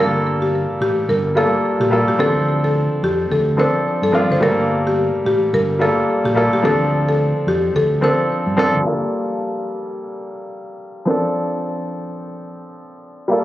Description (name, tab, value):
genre	afrobeats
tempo	108 BPM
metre	4/4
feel	swing 58% on 16ths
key	D minor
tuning	A4 = 435 Hz
part	buzzing marimba with medium mallets	melody	0.0-8.2 s	G4 to C5	-19 LUFS	left 1 dB	ping-pong delay
part	clear baby grand piano	accompaniment	0.0-13.4 s	E3 to A4	-19 LUFS	equal	none
part	fingered electric bass	bass	0.0-8.8 s	G1 to G2	-21 LUFS	equal	none
room	light reverb, studio reverb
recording	recorded on a phone in the room, club reverb, low-pass filter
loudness	-15 LUFS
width	side -14 dB against mid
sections	0.0-8.9 A section; 8.9-13.4 B section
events	none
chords	0.0 Gm9; 2.2 Dm7; 4.4 Gm9; 6.6 Dm7; 8.9 Gm9; 11.1 Dm7